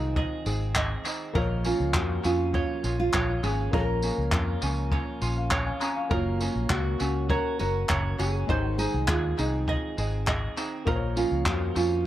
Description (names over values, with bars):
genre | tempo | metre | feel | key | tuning
acoustic pop | 101 BPM | 4/4 | straight | unclear | A4 = 441 Hz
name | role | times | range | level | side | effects
nylon-string guitar | melody | 0.0-12.1 s | Eb4 to Bb4 | -30 LUFS | right 2 dB | dub echo
felt-muted upright piano | accompaniment | 0.0-12.1 s | Gb3 to Bb5 | -37 LUFS | left 6 dB | dub echo
ukulele | accompaniment | 0.0-12.1 s | Db4 to Eb5 | -34 LUFS | right 3 dB | dub echo
twelve-string electric guitar | arpeggios | 0.0-12.1 s | Eb3 to Ab4 | -36 LUFS | right 5 dB | none
vintage muted fingered electric bass | bass | 0.0-12.1 s | Gb1 to F2 | -29 LUFS | equal | none
jazz brush drum kit | drums | 0.2-11.9 s | handclaps, kick drum, tambourine | -30 LUFS | equal | dub echo
group handclap | percussion | 0.8-11.6 s | none | -43 LUFS | left 4 dB | none
room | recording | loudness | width
light reverb, small room ambience | echo-heavy mix | -24 LUFS | side -13 dB against mid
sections
0.0-12.1 A section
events
none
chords
0.0 Ab; 1.4 Bbm; 6.1 Gb; 8.5 Ab; 10.9 Bbm